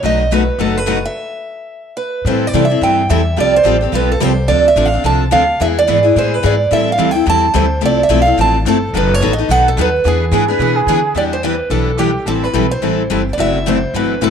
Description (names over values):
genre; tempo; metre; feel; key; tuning
acoustic string swing (jazz manouche); 216 BPM; 4/4; swing 58% on 8ths; A minor, E minor from 11.2 s; A4 = 440 Hz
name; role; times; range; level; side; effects
picked steel-string acoustic guitar; melody; 0.0-14.3 s; G4 to A5; -15 LUFS; right 3 dB; none
picked steel-string acoustic guitar; accompaniment; 0.0-14.3 s; B2 to A4; -18 LUFS; left 12 dB; none
picked steel-string acoustic guitar; accompaniment; 0.0-14.3 s; B2 to B4; -21 LUFS; right 11 dB; none
upright bass; bass; 0.0-14.3 s; F#1 to D3; -18 LUFS; left 1 dB; none
mellow concert flute; second line; 10.3-11.2 s; G#4 to B4; -17 LUFS; right 5 dB; none
room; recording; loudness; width
wet spring reverb, RT60 1.4 s; 1960s-style stereo with parts hard left and right; -11 LUFS; side -7 dB against mid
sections
0.0-2.3 A section; 2.3-11.2 B section; 11.2-14.3 A section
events
stop 1.1-2.3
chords
0.0 B7; 1.1 N.C.; 2.3 Am7; 3.4 Fadd9; 4.5 Dm7; 5.6 E; 6.7 Am7; 7.8 Fmaj7; 8.9 B7; 10.0 E7; 11.2 Em7; 12.3 Am7; 13.4 F#m7b5